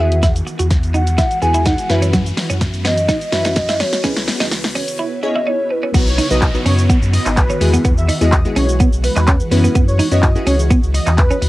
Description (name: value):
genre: dance-pop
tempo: 126 BPM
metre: 4/4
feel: straight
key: B major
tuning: A4 = 440 Hz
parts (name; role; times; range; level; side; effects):
- hollow clarinet-like synth lead; melody; 0.0-5.9 s; B4 to G#5; -20 LUFS; equal; chorus, cassette tape, analog delay
- wavetable chord stab; accompaniment; 0.0-11.1 s; F#3 to C#5; -22 LUFS; left 1 dB; sidechain pumping
- ethereal airy pad; sustained chords; 0.0-11.5 s; C#3 to F#4; -25 LUFS; right 1 dB; ensemble chorus, built-in reverb, phaser, sidechain pumping
- twelve-string electric guitar; riff; 0.0-11.4 s; F#3 to F#4; -20 LUFS; right 2 dB; wide subtle chorus
- warm sub bass; bass; 0.0-11.5 s; G#1 to F#2; -17 LUFS; equal; sidechain pumping
- riser and downlifter; sound effects; 0.3-9.8 s; none; -30 LUFS; equal; none
- house drum kit; drums; 0.1-11.5 s; crash cymbal, handclaps, hi-hat, kick drum, shaker, snare drum; -17 LUFS; equal; cassette tape
- soft supersaw; melody; 6.1-11.5 s; B4 to E5; -24 LUFS; equal; sidechain pumping, cassette tape, analog delay
room: light reverb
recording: home recording on cassette, high-pass filter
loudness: -13 LUFS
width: side -17 dB against mid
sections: 0.0-5.9 A section; 5.9-11.5 B section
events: build-up 0.0-5.9; drum fill 0.0-5.0; filter sweep 0.0-5.9; riser 0.3-5.9; drop 5.9-11.5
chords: 0.0 Eadd9; 1.9 F#7sus4; 4.0 C#m7; 5.9 B; 7.6 Eadd9; 9.5 F#7sus4